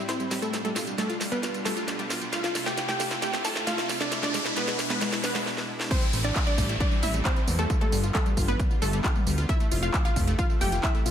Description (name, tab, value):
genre	uplifting trance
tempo	134 BPM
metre	4/4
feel	straight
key	A minor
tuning	A4 = 437 Hz
part	wide unison pluck	melody	0.0-11.1 s	A3 to A5	-31 LUFS	right 1 dB	sidechain pumping, ping-pong delay
part	supersaw pad	sustained chords	0.0-11.1 s	A2 to F4	-36 LUFS	right 1 dB	sidechain pumping
part	wide unison pluck	arpeggios	0.0-11.1 s	G3 to F4	-34 LUFS	left 2 dB	sidechain pumping, ping-pong delay
part	riser and downlifter	sound effects	0.3-9.5 s	none	-36 LUFS	equal	none
part	techno drum kit	drums	0.1-11.1 s	crash cymbal, handclaps, hi-hat, snare drum, tambourine, toms	-31 LUFS	equal	overdrive, high-pass filter on snare, small room ambience, high-pass filter on hats, high-pass filter on perc, high-pass filter on toms, high-pass filter on cymbals
part	wide unison pluck	second line	5.9-11.1 s	A4 to G5	-36 LUFS	equal	sidechain pumping, ping-pong delay
part	electronic kick drum	drums	5.9-10.9 s	none	-25 LUFS	equal	overdrive, small room ambience
part	fat analog bass	bass	6.1-11.1 s	F1 to E2	-27 LUFS	equal	sidechain pumping
room	light reverb, digital ambience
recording	none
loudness	-24 LUFS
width	side -9 dB against mid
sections	0.0-5.9 A section; 5.9-11.1 B section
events	build-up 0.0-5.9; drum fill 0.0-5.5, 5.5-5.9; filter sweep on synth pluck 0.0-5.9; riser 0.3-5.5; break 5.5-5.9; drop 5.9-11.1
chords	0.0 Am7; 0.5 G7; 2.3 Fmaj7; 4.1 E7; 5.9 Am7; 7.7 G7; 9.5 Fmaj7